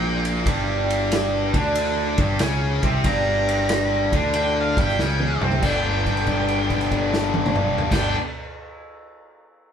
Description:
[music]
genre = blues rock power trio and southern rock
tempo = 93 BPM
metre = 4/4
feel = swing 67% on 8ths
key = unclear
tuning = A4 = 440 Hz
[part]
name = octave-fuzz lead guitar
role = melody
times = 0.0-8.2 s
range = F5 to Bb5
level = -28 LUFS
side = right 1 dB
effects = distortion
[part]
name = tight distorted guitar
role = riff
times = 0.0-8.2 s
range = G2 to D4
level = -22 LUFS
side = left 1 dB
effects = distortion
[part]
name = fuzz fingered electric bass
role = bass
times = 0.0-8.1 s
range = G1 to D2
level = -25 LUFS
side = equal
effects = overdrive
[part]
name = vintage drum kit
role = drums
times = 0.2-8.1 s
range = crash cymbal, kick drum, ride cymbal, snare drum, toms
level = -25 LUFS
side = equal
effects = none
[sound]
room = wet studio ambience, RT60 0.5 s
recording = band playing live in one room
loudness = -19 LUFS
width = side -8 dB against mid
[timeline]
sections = 0.0-5.6 A section; 5.6-8.2 B section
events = drum fill 5.0-5.6; held note 5.6-7.8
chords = 0.0 G5; 5.6 G

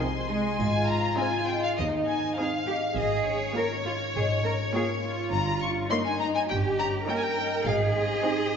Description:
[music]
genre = cinematic, playful, whimsical film cue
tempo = 102 BPM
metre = 4/4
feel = straight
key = Ab major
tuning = A4 = 439 Hz
[part]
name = rich chamber violin section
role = melody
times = 0.0-8.6 s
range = Db5 to Db6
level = -30 LUFS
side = left 3 dB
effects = none
[part]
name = rich studio violin section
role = second line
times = 0.0-8.6 s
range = Ab4 to C6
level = -38 LUFS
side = equal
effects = none
[part]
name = rich studio viola section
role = accompaniment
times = 0.0-8.6 s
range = Ab3 to F4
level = -32 LUFS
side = right 3 dB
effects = none
[part]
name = concert harp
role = arpeggios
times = 0.0-8.6 s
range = G2 to Bb4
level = -31 LUFS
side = left 3 dB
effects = none
[part]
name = rich chamber cello section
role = bass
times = 0.0-8.6 s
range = C3 to Bb4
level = -30 LUFS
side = right 2 dB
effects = none
[part]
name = rich chamber double bass section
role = bass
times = 0.0-8.1 s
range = G1 to Eb2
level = -33 LUFS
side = right 3 dB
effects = none
[part]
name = triangle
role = percussion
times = 0.6-1.7 s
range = none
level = -51 LUFS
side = equal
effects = none
[sound]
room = wet scoring stage reverb, RT60 1.9 s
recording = recorded in a church or concert hall, nothing above 7.7 kHz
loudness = -24 LUFS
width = side -7 dB against mid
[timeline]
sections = 0.6-8.6 A section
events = none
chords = 0.0 Ab/C; 0.6 Ab; 3.0 Bbm7/Ab; 5.3 Eb7/G; 7.7 Ab

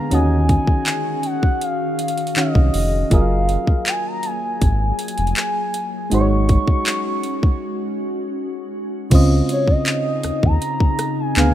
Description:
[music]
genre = contemporary R&B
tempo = 80 BPM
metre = 4/4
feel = straight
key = Db major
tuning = A4 = 440 Hz
[part]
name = gliding portamento lead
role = melody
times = 0.0-11.5 s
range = Db5 to Db6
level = -24 LUFS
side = equal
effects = chorus, ping-pong delay
[part]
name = soft electric-piano-like synth keys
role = accompaniment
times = 0.0-11.5 s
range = Db3 to F5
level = -23 LUFS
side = right 1 dB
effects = chorus
[part]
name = glassy FM pad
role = sustained chords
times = 0.0-11.5 s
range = Db3 to Ab4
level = -27 LUFS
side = left 2 dB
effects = ensemble chorus, built-in reverb
[part]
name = round analog bass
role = bass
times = 0.1-11.5 s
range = F1 to Eb2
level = -18 LUFS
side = equal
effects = none
[part]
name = trap drum kit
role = drums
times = 0.1-11.5 s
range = crash cymbal, handclaps, hi-hat, kick drum, rim click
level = -18 LUFS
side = equal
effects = none
[sound]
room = little or no reverb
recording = rough home demo mix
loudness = -16 LUFS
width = side -12 dB against mid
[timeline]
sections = 0.0-9.1 A section; 9.1-11.5 B section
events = break 7.6-9.1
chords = 0.1 Ebm9; 3.1 Gbmaj13; 6.1 Ab7sus4; 9.1 Dbmaj9

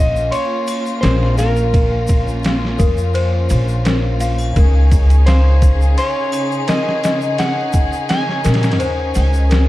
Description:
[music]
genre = trip hop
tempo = 85 BPM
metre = 4/4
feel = straight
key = Bb minor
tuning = A4 = 440 Hz
[part]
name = electric slide guitar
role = melody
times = 0.0-9.5 s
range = Bb4 to Ab5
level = -22 LUFS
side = right 1 dB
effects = tape echo
[part]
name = rich studio string section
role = sustained chords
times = 0.0-9.7 s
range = Db3 to Ab4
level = -23 LUFS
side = left 1 dB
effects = none
[part]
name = celesta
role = arpeggios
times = 0.0-9.7 s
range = Bb4 to C6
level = -24 LUFS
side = left 5 dB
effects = ping-pong delay
[part]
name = upright bass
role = bass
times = 0.0-9.7 s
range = Bb1 to Bb2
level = -14 LUFS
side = equal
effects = tube saturation
[part]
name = egg shaker and triangle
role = percussion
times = 0.2-9.6 s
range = none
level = -36 LUFS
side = left 2 dB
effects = none
[part]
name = trip hop sampler-style drum kit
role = drums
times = 0.3-9.7 s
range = kick drum, ride cymbal, snare drum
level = -19 LUFS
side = equal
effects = small room ambience
[sound]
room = small room ambience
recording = dark, warm production, vinyl crackle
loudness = -13 LUFS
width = side -16 dB against mid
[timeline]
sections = 0.0-9.7 A section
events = none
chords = 0.0 Bbm; 4.6 Dbsus2

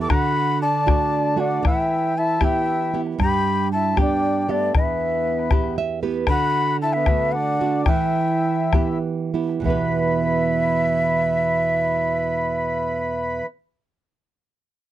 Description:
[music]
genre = andean folk, Andean ensemble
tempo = 62-78 BPM (dotted quarters)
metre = 6/8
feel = straight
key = E minor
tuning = A4 = 439 Hz
[part]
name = breathy large quena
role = melody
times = 0.0-13.4 s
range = D5 to D6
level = -22 LUFS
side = left 1 dB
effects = none
[part]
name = mellow accordion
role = second line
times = 0.0-13.5 s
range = A3 to B4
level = -26 LUFS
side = left 2 dB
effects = none
[part]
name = flamenco guitar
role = accompaniment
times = 0.0-13.5 s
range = E2 to E5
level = -24 LUFS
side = right 6 dB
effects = none
[part]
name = bombo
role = percussion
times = 0.1-9.9 s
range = none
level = -20 LUFS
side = left 2 dB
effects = none
[sound]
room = little or no reverb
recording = dry, close 1970s-style studio recording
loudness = -18 LUFS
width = side -12 dB against mid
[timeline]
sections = 0.0-9.6 A section; 9.6-13.5 B section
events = nylon-string guitar fill 5.5-6.3; slowing down 6.3-9.6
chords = 0.1 D; 1.6 Em; 3.2 G; 4.7 Em; 6.3 D; 7.9 Em

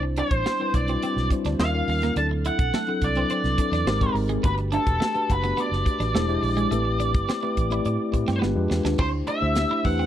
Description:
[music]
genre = polished 1980s jazz-funk pop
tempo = 105 BPM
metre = 4/4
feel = straight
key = unclear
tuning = A4 = 440 Hz
[part]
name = mellow tine electric piano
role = accompaniment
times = 0.0-10.1 s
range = F#3 to D5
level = -27 LUFS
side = left 2 dB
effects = medium stereo tremolo, lush chorus
[part]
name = twelve-string electric guitar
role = riff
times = 0.0-10.1 s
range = G#3 to E4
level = -31 LUFS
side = right 7 dB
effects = lush chorus
[part]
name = vintage muted fingered electric bass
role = bass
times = 0.0-10.1 s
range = E1 to A2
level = -26 LUFS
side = equal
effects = none
[part]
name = octave-fuzz lead guitar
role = melody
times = 0.2-10.1 s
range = A4 to A5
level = -27 LUFS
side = equal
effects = distortion, tape echo
[part]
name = tight funk drum kit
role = drums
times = 0.2-10.0 s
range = crash cymbal, hi-hat, kick drum, snare drum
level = -26 LUFS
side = equal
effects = none
[sound]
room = small room reverb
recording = dry, close 1970s-style studio recording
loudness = -21 LUFS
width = side -11 dB against mid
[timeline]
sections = 0.0-9.0 A section; 9.0-10.1 B section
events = drum fill 8.4-9.0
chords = 0.0 Cmaj9; 1.6 D#9; 2.2 D9; 3.9 G#maj9; 4.4 Gmaj9; 6.2 E7alt; 6.7 Am9; 8.4 G7b9; 9.0 D9sus4

